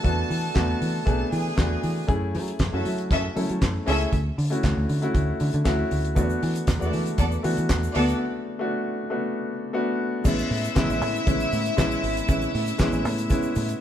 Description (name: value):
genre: disco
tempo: 118 BPM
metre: 4/4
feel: straight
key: A major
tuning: A4 = 438 Hz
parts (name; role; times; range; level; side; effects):
- clear studio string section; second line; 0.0-13.8 s; B3 to A5; -29 LUFS; equal; none
- warm baby grand piano; accompaniment; 0.0-13.8 s; G#3 to A4; -27 LUFS; left 1 dB; none
- fingered electric bass; bass; 0.0-13.7 s; G#1 to F#3; -26 LUFS; equal; none
- damped 70s drum kit; drums; 0.0-13.8 s; crash cymbal, handclaps, hi-hat, kick drum, snare drum; -26 LUFS; equal; none
- egg shaker; percussion; 6.2-13.8 s; none; -45 LUFS; right 8 dB; none
room: moderate stone room reverb, RT60 1.1 s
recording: band playing live in one room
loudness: -22 LUFS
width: side -10 dB against mid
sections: 0.0-2.1 A section; 2.1-10.2 B section; 10.2-13.8 C section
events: break 8.2-10.2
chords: 0.0 E7sus4; 2.1 F#m9; 4.1 Dmaj9; 6.2 E9sus4; 10.2 Amaj7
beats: | 0.04 0.55 1.06 1.57 | 2.08 2.59 3.10 3.61 | 4.12 4.63 5.14 5.66 | 6.17 6.68 7.19 7.70 | 8.21 8.72 9.23 9.74 | 10.25 10.76 11.27 11.78 | 12.28 12.79 13.30